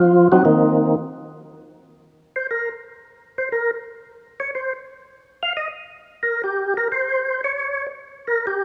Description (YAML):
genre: jazz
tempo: 177 BPM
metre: 4/4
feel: swing 63% on 8ths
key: Eb mixolydian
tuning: A4 = 441 Hz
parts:
  - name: percussive tonewheel organ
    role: solo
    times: 0.0-8.6 s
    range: Eb3 to F5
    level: -20 LUFS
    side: equal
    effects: slow rotary speaker, overdrive, chorus vibrato
room: moderate lush hall reverb, RT60 2.3 s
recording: rough home demo mix, small room ambience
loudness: -21 LUFS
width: mono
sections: 0.0-8.6 A section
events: tonewheel organ solo 0.0-8.6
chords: 0.0 Ebm69; 0.8 Eb5; 3.5 N.C.